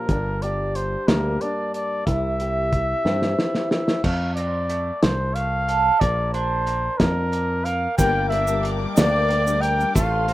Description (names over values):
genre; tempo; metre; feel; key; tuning
indie folk with a building arrangement; 61 BPM (dotted quarters); 6/8; straight; F major; A4 = 441 Hz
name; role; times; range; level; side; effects
mellow trumpet; melody; 0.0-10.3 s; Bb4 to G5; -24 LUFS; equal; plate reverb
fingerpicked acoustic archtop guitar; accompaniment; 0.0-4.0 s; G2 to G4; -28 LUFS; left 1 dB; plate reverb
fingered electric bass; bass; 0.1-10.3 s; G1 to G2; -25 LUFS; equal; none
cloth-damped thuddy drum kit; drums; 0.1-10.3 s; crash cymbal, hi-hat, kick drum, snare drum; -22 LUFS; equal; none
bowl-back mandolin; arpeggios; 4.0-10.3 s; A3 to Bb4; -28 LUFS; right 6 dB; plate reverb
picked twelve-string acoustic guitar; accompaniment; 8.0-10.3 s; G2 to Bb4; -27 LUFS; left 6 dB; ensemble chorus, plate reverb
dark studio string section; sustained chords; 8.0-10.3 s; A4 to D6; -33 LUFS; left 3 dB; plate reverb
tube shaker; percussion; 8.0-10.1 s; none; -33 LUFS; right 4 dB; none
room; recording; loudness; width
moderate small room reverb, RT60 0.5 s; rough home demo mix; -19 LUFS; side -16 dB against mid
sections
0.0-4.0 A section; 4.0-10.3 B section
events
drum fill 3.1-4.0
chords
0.1 Gm; 2.1 C; 4.0 F; 6.0 Bb; 8.0 Gm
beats
| 0.09 1.08 | 2.06 3.05 | 4.04 5.03 | 6.01 7.00 | 7.99 8.97 | 9.96